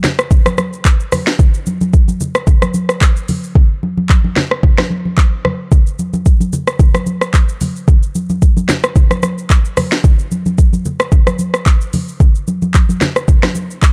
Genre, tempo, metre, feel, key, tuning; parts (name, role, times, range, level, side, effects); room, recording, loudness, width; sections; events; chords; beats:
amapiano; 111 BPM; 4/4; swing 55% on 16ths
afro-pop drum kit; drums; 0.0-13.9 s; handclaps, hi-hat, kick drum, rim click, shaker, snare drum; -13 LUFS; equal
congas; percussion; 0.0-13.7 s; -21 LUFS; equal
little or no reverb; dark, warm production; -13 LUFS; mono
0.0-13.9 A section
hi-hats muted 3.6-5.7
0.31 0.85 | 1.39 1.93 2.47 3.01 | 3.55 4.09 4.63 5.18 | 5.72 6.26 6.80 7.34 | 7.88 8.42 8.96 9.50 | 10.04 10.58 11.12 11.66 | 12.20 12.74 13.28 13.82